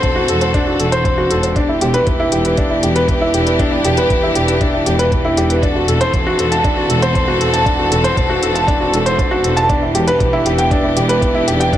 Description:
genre	piano and strings electronica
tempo	118 BPM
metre	4/4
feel	straight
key	E minor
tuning	A4 = 440 Hz
part	rich chamber string section	sustained chords	0.0-11.8 s	E3 to A4	-20 LUFS	left 1 dB	none
part	dark upright piano	riff	0.0-11.8 s	D4 to A5	-15 LUFS	equal	ping-pong delay
part	rich studio double bass section	bass	0.0-11.6 s	E1	-20 LUFS	equal	sidechain pumping
part	electronic hi-hat	drums	0.0-11.8 s	none	-25 LUFS	left 3 dB	none
part	electronic kick drum	drums	0.0-11.8 s	none	-18 LUFS	equal	none
room	light reverb, small room ambience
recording	none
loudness	-12 LUFS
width	side -11 dB against mid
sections	0.0-11.8 A section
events	none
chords	0.0 D7/E; 1.6 Em7; 5.6 D7/E; 9.7 Em7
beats	0.03 0.54 1.05 | 1.56 2.07 2.58 3.08 | 3.59 4.10 4.61 5.12 | 5.63 6.13 6.64 7.15 | 7.66 8.17 8.68 9.19 | 9.70 10.20 10.71 11.22 | 11.73

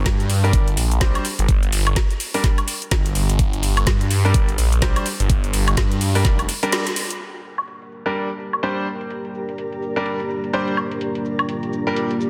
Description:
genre	bass house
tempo	126 BPM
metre	4/4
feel	swing 60% on 16ths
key	G minor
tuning	A4 = 439 Hz
part	phased detuned saw bass	bass	0.0-6.5 s	F1 to G2	-22 LUFS	equal	phaser, sidechain pumping
part	electronic kick drum	drums	0.1-6.4 s	none	-21 LUFS	equal	none
part	garage drum kit	drums	0.1-12.3 s	crash cymbal, hi-hat, shaker, snare drum, woodblock	-27 LUFS	equal	low-pass filter on hats, low-pass filter on snare, low-pass filter on perc, low-pass filter on cymbals, low-pass filter on room
part	bright concert grand piano	stabs	0.4-12.1 s	G3 to C5	-28 LUFS	equal	sidechain pumping, low-pass filter, dub echo
part	dark analog pad	sustained chords	7.2-12.3 s	G3 to Bb4	-30 LUFS	equal	chorus, sidechain pumping
part	granular cloud pad	texture	8.3-12.3 s	G4 to Bb5	-32 LUFS	equal	built-in reverb, sidechain pumping
room	light reverb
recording	dense, heavily limited modern master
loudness	-21 LUFS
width	mono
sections	0.0-7.2 A section; 7.2-12.3 B section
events	band accent 6.7; filter sweep on analog synth pad 7.2-12.3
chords	0.0 Gm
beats	0.06 0.53 1.01 | 1.49 1.96 2.44 2.92 | 3.39 3.87 4.34 4.82 | 5.30 5.77 6.25 6.72 | 7.20 7.68 8.15 8.63 | 9.11 9.58 10.06 10.53 | 11.01 11.49 11.96

